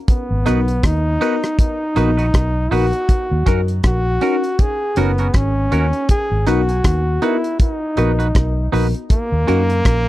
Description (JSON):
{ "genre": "lovers rock reggae", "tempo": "80 BPM", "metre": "4/4", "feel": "swing 58% on 16ths", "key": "unclear", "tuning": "A4 = 440 Hz", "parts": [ { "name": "brilliant trombone", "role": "melody", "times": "0.1-10.1 s", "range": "A#3 to G#4", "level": "-21 LUFS", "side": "equal", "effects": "tape echo" }, { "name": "cloth-damped thuddy drum kit", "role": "drums", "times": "0.1-10.1 s", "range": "hi-hat, kick drum, rim click", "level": "-16 LUFS", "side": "equal", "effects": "none" }, { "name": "vintage muted fingered electric bass", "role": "bass", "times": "0.3-10.1 s", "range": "F#1 to F#2", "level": "-18 LUFS", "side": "equal", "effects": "none" }, { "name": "FM electric piano with soft pad layer", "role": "accompaniment", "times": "0.5-9.6 s", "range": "B3 to A#4", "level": "-23 LUFS", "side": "left 3 dB", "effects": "chorus, phaser, tape echo" }, { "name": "twangy electric guitar", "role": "stabs", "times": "0.5-9.6 s", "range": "C#4 to B4", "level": "-22 LUFS", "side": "right 6 dB", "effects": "none" } ], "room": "little or no reverb", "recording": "dry, close 1970s-style studio recording", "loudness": "-15 LUFS", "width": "side -15 dB against mid", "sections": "0.0-10.1 A section", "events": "none", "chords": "0.1 G#m7 (rootless); 3.1 D#m7; 6.1 G#m7 (rootless); 9.1 D#m7" }